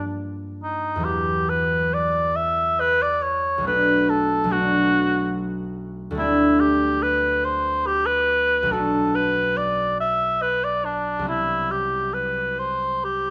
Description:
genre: classical, impressionist duo for cor anglais and harp.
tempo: 70 BPM.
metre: 3/4.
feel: rubato.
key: unclear.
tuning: A4 = 440 Hz.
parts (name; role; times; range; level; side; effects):
mellow cor anglais; melody; 0.0-13.3 s; D4 to E5; -23 LUFS; equal; none.
concert harp; accompaniment; 0.0-13.3 s; B1 to F#4; -27 LUFS; equal; none.
room: moderate recital hall reverb, RT60 1.6 s.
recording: close, detailed microphones.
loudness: -22 LUFS.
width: mono.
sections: 0.0-13.3 A section.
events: none.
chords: 0.0 Gm7; 1.1 Emadd9; 3.7 Bm7; 6.2 D7sus4; 8.7 Bm7; 11.3 Cmaj7#11.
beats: 0.20 | 1.07 1.94 2.81 | 3.68 4.53 5.37 | 6.21 7.04 7.88 | 8.74 9.59 10.44 | 11.30 12.16 13.06.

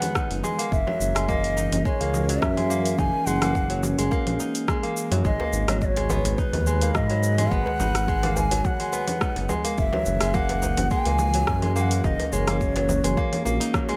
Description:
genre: organic downtempo.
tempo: 106 BPM.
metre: 4/4.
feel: swing 53% on 16ths.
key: unclear.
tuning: A4 = 440 Hz.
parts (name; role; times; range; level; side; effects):
breathy bass bansuri; melody; 0.0-13.5 s; B4 to G#5; -30 LUFS; equal; delay.
warbly tape-like pad; sustained chords; 0.0-14.0 s; D#3 to B5; -34 LUFS; equal; chorus, built-in reverb, vintage 12-bit sampler grit, sidechain pumping.
kora; arpeggios; 0.0-14.0 s; F#3 to D#4; -31 LUFS; equal; delay.
deep house drum kit; drums; 0.0-14.0 s; cabasa, congas, hi-hat, rim click; -32 LUFS; equal; small room ambience.
electronic kick drum; drums; 0.2-13.9 s; none; -29 LUFS; equal; small room ambience.
smooth synth bass; bass; 0.3-13.6 s; F#1 to G#2; -28 LUFS; equal; sidechain pumping.
djembe; percussion; 5.4-14.0 s; none; -36 LUFS; equal; none.
room: light reverb, small room ambience.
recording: none.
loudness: -23 LUFS.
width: mono.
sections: 0.0-14.0 A section.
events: none.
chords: 0.0 G#m7; 0.7 F#7; 5.2 G#m7; 9.8 F#7.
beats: 0.16 | 0.72 1.29 1.85 2.42 | 2.99 3.55 4.12 4.68 | 5.25 5.82 6.38 6.95 | 7.51 8.08 8.65 9.21 | 9.78 10.34 10.91 11.48 | 12.04 12.61 13.18 13.74.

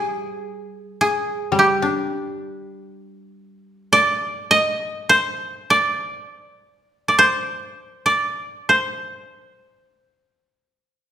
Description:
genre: japanese traditional, Japanese chamber music.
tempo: 51 BPM.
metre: 4/4.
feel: rubato.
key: C hirajoshi.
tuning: A4 = 439 Hz.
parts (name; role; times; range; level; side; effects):
koto; melody; 0.0-11.1 s; G4 to Eb5; -17 LUFS; right 1 dB; none.
koto; accompaniment; 0.0-4.9 s; G3 to D4; -25 LUFS; left 2 dB; none.
room: moderate recital hall reverb, RT60 1.4 s.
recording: recorded in a church or concert hall.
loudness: -17 LUFS.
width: side -10 dB against mid.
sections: 0.0-11.1 A section.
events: none.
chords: none.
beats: 0.36 1.55 2.74 | 3.91 5.08 6.27 7.45 | 8.64 9.85 11.06.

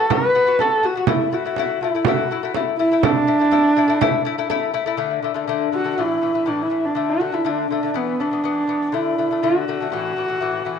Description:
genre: mongolian traditional, Mongolian folk.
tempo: 122 BPM.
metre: 4/4.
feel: straight.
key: D gong mode.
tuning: A4 = 440 Hz.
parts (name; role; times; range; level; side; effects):
dark horsehead fiddle; melody; 0.0-10.8 s; B3 to B4; -19 LUFS; right 1 dB; none.
lute; arpeggios; 0.0-10.8 s; A2 to F#4; -23 LUFS; left 10 dB; tape echo.
frame drum; percussion; 0.1-4.8 s; none; -22 LUFS; right 11 dB; none.
room: light reverb, studio ambience.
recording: 1960s-style stereo with parts hard left and right.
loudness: -17 LUFS.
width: side -7 dB against mid.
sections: 0.0-5.0 A section; 5.0-10.8 B section.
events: none.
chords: 0.0 B5; 1.1 A5; 5.0 D5; 6.0 A5; 7.0 D5; 8.0 E5; 8.9 D5; 9.9 A5.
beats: 0.10 0.59 | 1.08 1.57 2.06 2.55 | 3.04 3.53 4.02 4.51 | 5.00 5.49 5.98 6.48 | 6.97 7.46 7.96 8.45 | 8.94 9.44 9.93 10.42.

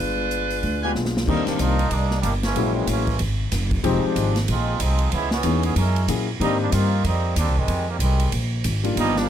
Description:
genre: jazz, big band swing.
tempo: 188 BPM.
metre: 4/4.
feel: swing 61% on 8ths.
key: C minor.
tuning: A4 = 440 Hz.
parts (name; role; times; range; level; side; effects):
clear saxophone section; melody; 0.0-1.0 s; G#3 to B4; -25 LUFS; equal; none.
upright bass; bass; 0.0-9.3 s; F1 to A#2; -22 LUFS; equal; none.
swinging big-band drum kit; drums; 0.0-9.2 s; crash cymbal, hi-hat, kick drum, ride cymbal, snare drum; -29 LUFS; right 2 dB; none.
warm grand piano; accompaniment; 0.8-9.3 s; Eb3 to Ab4; -24 LUFS; left 5 dB; none.
bright trumpet section; stabs; 0.8-0.9 s; G4 to Ab5; -28 LUFS; left 1 dB; none.
muted trombone section; second line; 1.3-9.3 s; C3 to A#4; -26 LUFS; right 3 dB; none.
room: little or no reverb.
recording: close, detailed microphones.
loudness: -19 LUFS.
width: side -10 dB against mid.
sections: 0.0-1.3 A section; 1.3-9.3 B section.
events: drum fill 1.0-1.3; trombone section solo 1.3-9.3.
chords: 0.0 G7b9; 1.3 Cm9; 2.6 F#9; 3.8 Fm7; 5.1 Dbm7; 5.8 F#9; 6.4 Abmaj9#11; 7.7 Fm9; 8.3 Bb7.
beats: | 0.01 0.33 0.65 0.97 | 1.29 1.61 1.93 2.25 | 2.57 2.89 3.21 3.52 | 3.85 4.17 4.49 4.80 | 5.12 5.45 5.76 6.09 | 6.41 6.73 7.05 7.37 | 7.69 8.01 8.33 8.65 | 8.97 9.29.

